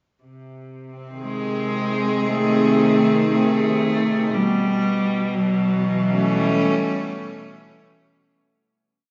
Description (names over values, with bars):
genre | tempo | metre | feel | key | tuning
dark ambient drone | 59 BPM | 4/4 | straight | Ab double harmonic | A4 = 443 Hz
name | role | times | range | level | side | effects
bright studio cello section | sustained chords | 0.2-8.4 s | B2 to Ab4 | -24 LUFS | equal | none
warm cello | melody | 1.2-7.8 s | Gb3 to A3 | -23 LUFS | equal | tape echo
room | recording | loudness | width
wet lush hall reverb, RT60 2.6 s | dreamy mix soaked in reverb, nothing above 7.6 kHz | -20 LUFS | mono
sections
0.2-8.3 A section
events
fade-in on cello section 0.2-8.3; fade-in on cello 0.2-8.3; fade-out 4.3-8.3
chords
0.2 Ab; 4.3 G